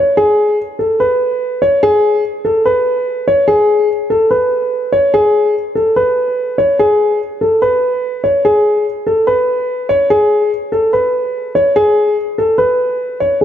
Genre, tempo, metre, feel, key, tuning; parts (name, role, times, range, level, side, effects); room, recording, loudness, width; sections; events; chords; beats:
hip hop; 145 BPM; 4/4; half-time; A4 = 444 Hz
dark concert grand piano; solo; 0.0-13.4 s; G#4 to C#5; -11 LUFS; equal; low-pass filter, ping-pong delay
light reverb, studio reverb; dark, warm production; -11 LUFS; side -10 dB against mid
0.2-13.4 A section
| 0.17 0.59 1.00 1.41 | 1.83 2.24 2.65 3.07 | 3.48 3.90 4.31 4.72 | 5.14 5.55 5.96 6.38 | 6.79 7.21 7.62 8.03 | 8.45 8.86 9.28 9.69 | 10.10 10.52 10.93 11.34 | 11.76 12.17 12.59 13.00 | 13.41